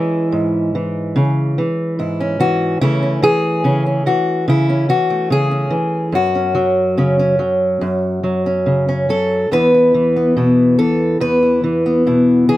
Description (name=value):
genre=folk, solo fingerstyle acoustic guitar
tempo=72 BPM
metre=4/4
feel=straight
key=E major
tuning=A4 = 440 Hz
part: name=fingerpicked steel-string acoustic guitar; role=solo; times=0.0-12.6 s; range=E2 to B4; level=-13 LUFS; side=equal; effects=none
room=little or no reverb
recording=close, detailed microphones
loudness=-13 LUFS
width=side -15 dB against mid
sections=0.0-12.6 A section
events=none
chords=0.0 C#m; 2.8 A/C#; 6.1 F#5; 9.5 E5